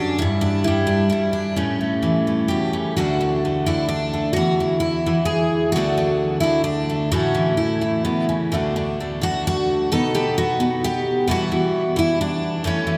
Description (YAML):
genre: folk, solo fingerstyle acoustic guitar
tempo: 131 BPM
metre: 3/4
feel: rubato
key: D major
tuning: A4 = 442 Hz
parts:
  - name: picked twelve-string acoustic guitar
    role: solo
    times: 0.0-13.0 s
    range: D2 to A4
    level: -21 LUFS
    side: equal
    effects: none
room: wet cathedral reverb, RT60 5.9 s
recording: in a vast, echoing space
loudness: -21 LUFS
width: mono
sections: 0.0-3.0 A section; 3.0-13.0 B section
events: none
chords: 0.2 N.C.; 1.6 A; 3.0 D; 4.4 N.C.; 5.8 D; 7.1 A; 8.5 D; 9.9 B; 11.3 Emadd9/B